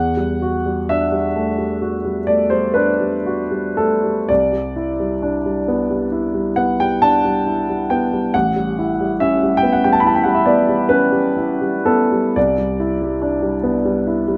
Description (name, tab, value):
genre	classical, impressionist solo piano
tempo	38-49 BPM (dotted quarters)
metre	9/8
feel	rubato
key	unclear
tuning	A4 = 439 Hz
part	clear grand piano	solo	0.0-14.4 s	A1 to B5	-18 LUFS	equal	none
room	light reverb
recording	close, detailed microphones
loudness	-18 LUFS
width	mono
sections	0.0-14.4 A section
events	none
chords	0.0 Em11; 4.3 Cmaj9; 8.3 A9; 12.4 Cmaj9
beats	1.35 2.75 | 4.29 5.68 7.03 | 8.34 9.62 10.90 | 12.36 13.63